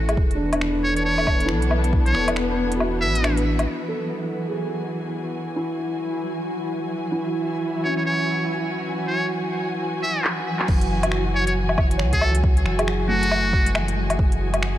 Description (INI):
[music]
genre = future garage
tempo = 137 BPM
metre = 4/4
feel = swing 61% on 16ths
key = F# minor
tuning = A4 = 440 Hz
[part]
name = felt-muted upright piano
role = accompaniment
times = 0.0-14.8 s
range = A3 to C#5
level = -29 LUFS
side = right 2 dB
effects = sidechain pumping, analog delay
[part]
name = dark studio string section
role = sustained chords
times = 0.0-14.8 s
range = E3 to G#5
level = -26 LUFS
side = left 1 dB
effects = sidechain pumping, low-pass filter
[part]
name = warm sub bass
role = bass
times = 0.0-3.7, 10.7-14.8 s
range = E1 to C#2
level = -24 LUFS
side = equal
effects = sidechain pumping
[part]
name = organic electronic drum kit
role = drums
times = 0.1-3.7, 10.2-14.7 s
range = crash cymbal, finger snaps, handclaps, hi-hat, woodblock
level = -27 LUFS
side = left 1 dB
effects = low-pass filter on hats, low-pass filter on perc, low-pass filter on snare, low-pass filter on cymbals, low-pass filter on room
[part]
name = electronic kick drum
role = drums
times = 0.2-2.0, 10.7-14.3 s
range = none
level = -21 LUFS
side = equal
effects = none
[part]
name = trumpet with metal mute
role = melody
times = 0.8-3.4, 7.8-13.7 s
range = F#4 to E5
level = -26 LUFS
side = equal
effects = tape echo
[part]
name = backwards swelling texture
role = texture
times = 4.7-14.8 s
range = E3 to G#5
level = -34 LUFS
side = equal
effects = built-in reverb
[sound]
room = light reverb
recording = none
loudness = -20 LUFS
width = side -13 dB against mid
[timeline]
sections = 0.0-3.7 A section; 3.7-10.7 B section; 10.7-14.8 C section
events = kick drops out 2.8-3.7; band accent 3.2; filter sweep on string section 3.7-10.7; drum fill 10.2-10.7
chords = 0.2 E7sus4; 3.7 F#m9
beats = | 0.18 0.61 1.05 1.49 | 1.93 2.37 2.80 3.24 | 3.68 4.12 4.55 4.99 | 5.43 5.87 6.31 6.75 | 7.18 7.62 8.06 8.50 | 8.94 9.37 9.81 10.25 | 10.69 11.12 11.56 12.00 | 12.44 12.88 13.31 13.75 | 14.19 14.63